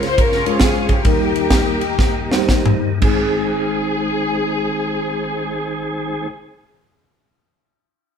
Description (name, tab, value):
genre	uptempo gospel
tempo	109-143 BPM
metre	4/4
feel	swing 66% on 8ths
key	Ab major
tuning	A4 = 441 Hz
part	muted studio string section	melody	0.0-6.3 s	Bb3 to C5	-22 LUFS	left 4 dB	none
part	mellow tine electric piano	accompaniment	0.0-6.3 s	Ab1 to C5	-22 LUFS	equal	medium stereo tremolo
part	tonewheel organ	sustained chords	0.0-6.3 s	Eb3 to Ab4	-25 LUFS	right 2 dB	fast rotary speaker, chorus vibrato
part	crisp fusion drum kit	drums	0.0-3.2 s	crash cymbal, kick drum, ride cymbal, snare drum, toms	-17 LUFS	equal	none
room	moderate stone room reverb, RT60 1.0 s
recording	band playing live in one room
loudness	-16 LUFS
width	side -7 dB against mid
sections	0.0-3.0 A section; 3.0-7.4 B section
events	slowing down 0.0-3.0; drum fill 2.0-3.0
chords	0.0 Db; 1.1 Eb; 3.0 Ab